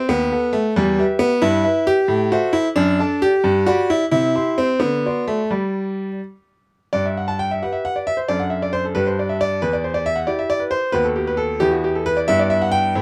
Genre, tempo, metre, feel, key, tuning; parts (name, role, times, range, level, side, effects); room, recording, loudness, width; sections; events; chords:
classical-period piano sonatina; 89 BPM (dotted quarters); 6/8; rubato; G major; A4 = 435 Hz
clear baby grand piano; solo; 0.0-13.0 s; D#2 to C6; -19 LUFS; equal
little or no reverb; close, detailed microphones; -19 LUFS; mono
0.0-6.9 A section; 6.9-13.0 A section
0.1 B7/D#; 0.7 Em; 1.4 Em/G; 2.1 Am; 2.8 D/F#; 3.4 G; 4.1 C; 4.8 D7; 5.5 G; 8.3 D/F#; 9.0 G5; 9.6 Em; 10.9 B/D#; 11.6 E5; 12.3 Em/G